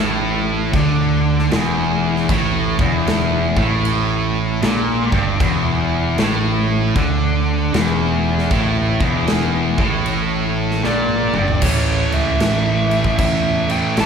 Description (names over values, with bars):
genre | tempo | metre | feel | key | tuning
stoner and doom metal | 77 BPM | 4/4 | swing 64% on 8ths | E minor | A4 = 440 Hz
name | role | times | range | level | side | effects
thick fuzz guitar | riff | 0.0-14.1 s | E2 to A3 | -23 LUFS | left 8 dB | distortion
thick fuzz guitar | riff | 0.0-14.1 s | E2 to A3 | -22 LUFS | right 7 dB | distortion
tight distorted guitar | riff | 0.0-14.1 s | E2 to A3 | -22 LUFS | equal | distortion
picked electric bass | bass | 0.0-14.1 s | E1 to E2 | -23 LUFS | equal | overdrive
big rock drum kit | drums | 0.7-14.1 s | crash cymbal, kick drum, snare drum, toms | -22 LUFS | equal | none
fuzz lead guitar | melody | 10.9-14.1 s | C#5 to A5 | -22 LUFS | equal | distortion
room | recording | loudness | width
light reverb | band playing live in one room | -15 LUFS | side -6 dB against mid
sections
0.0-11.6 A section; 11.6-14.1 B section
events
drum fill 10.9-11.6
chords
0.0 Em; 11.6 A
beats
0.73 1.51 | 2.29 3.07 3.84 4.62 | 5.40 6.17 6.95 7.73 | 8.51 9.29 10.07 10.85 | 11.63 12.42 13.20 13.98